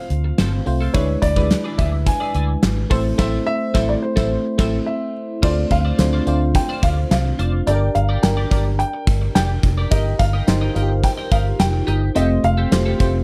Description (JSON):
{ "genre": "1980s-style pop", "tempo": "107 BPM", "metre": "4/4", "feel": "straight", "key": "D phrygian from 5.4 s", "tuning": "A4 = 440 Hz", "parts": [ { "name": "dark baby grand piano", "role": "melody", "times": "0.0-13.2 s", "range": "C5 to G#5", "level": "-27 LUFS", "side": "equal", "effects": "slapback echo" }, { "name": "FM electric piano", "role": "accompaniment", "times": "0.0-13.2 s", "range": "G#3 to C5", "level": "-26 LUFS", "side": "equal", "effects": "chorus, phaser" }, { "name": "vintage muted fingered electric bass", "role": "bass", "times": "0.1-13.2 s", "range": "F1 to D2", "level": "-22 LUFS", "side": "equal", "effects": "none" }, { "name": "gated 80s drum kit", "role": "drums", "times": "0.1-13.1 s", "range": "crash cymbal, hi-hat, kick drum, snare drum, tambourine", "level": "-22 LUFS", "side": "equal", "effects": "none" }, { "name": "twelve-string electric guitar", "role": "riff", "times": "0.2-13.2 s", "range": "C4 to E5", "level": "-33 LUFS", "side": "equal", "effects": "analog chorus" } ], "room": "little or no reverb", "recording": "none", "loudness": "-19 LUFS", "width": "mono", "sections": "0.0-5.4 A section; 5.4-13.2 B section", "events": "band accent 3.2-5.4", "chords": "0.0 F/D; 0.9 E7/D; 2.9 Am; 5.4 Dm7; 7.7 Gm; 9.9 Eb/G; 12.2 Fadd9" }